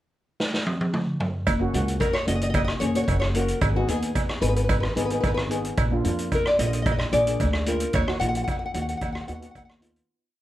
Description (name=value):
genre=calypso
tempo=111 BPM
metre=4/4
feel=straight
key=F# major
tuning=A4 = 438 Hz
part: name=street-band drum kit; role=drums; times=0.4-10.1 s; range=hi-hat, kick drum, rim click, snare drum, toms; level=-27 LUFS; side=equal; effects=none
part: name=upright bass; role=bass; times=1.5-10.0 s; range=F#1 to E#2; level=-26 LUFS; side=equal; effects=none
part: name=cowbell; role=percussion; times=1.5-9.7 s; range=none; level=-30 LUFS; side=right 5 dB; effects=none
part: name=steel pan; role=accompaniment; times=1.6-10.1 s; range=A#3 to G#4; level=-30 LUFS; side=left 1 dB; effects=none
part: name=nylon-string guitar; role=melody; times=2.0-9.7 s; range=F#4 to F#5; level=-27 LUFS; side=left 2 dB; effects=plate reverb
room=light reverb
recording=none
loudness=-22 LUFS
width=side -14 dB against mid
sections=0.0-1.5 pickup bar; 1.5-10.1 verse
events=drum fill 0.4-1.5; fade-out 7.9-10.1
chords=0.0 N.C.; 1.5 F#; 3.6 G#m; 5.8 A#7; 7.9 D#m; 9.0 B/D#